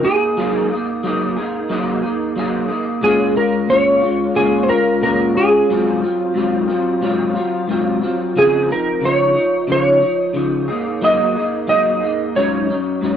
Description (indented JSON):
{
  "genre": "indie pop",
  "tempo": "90 BPM",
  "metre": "4/4",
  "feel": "straight",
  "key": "unclear",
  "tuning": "A4 = 443 Hz",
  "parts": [
    { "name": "clean lap steel guitar", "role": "melody", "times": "0.0-13.2 s", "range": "Ab4 to Eb5", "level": "-16 LUFS", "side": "right 1 dB", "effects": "analog chorus, slapback echo" },
    { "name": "electric guitar through a small old amp", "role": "accompaniment", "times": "0.0-13.2 s", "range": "Ab2 to Ab4", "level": "-18 LUFS", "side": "left 1 dB", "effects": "ensemble chorus, vibrato effect" }
  ],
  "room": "little or no reverb",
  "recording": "dry, close 1970s-style studio recording",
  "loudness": "-15 LUFS",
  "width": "side -9 dB against mid",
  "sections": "0.0-13.2 A section",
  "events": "none",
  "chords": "0.0 Gb69; 3.0 Bbm7; 5.7 Ab6; 8.4 Dbmaj9; 10.7 Gb69; 12.4 Ab7sus4"
}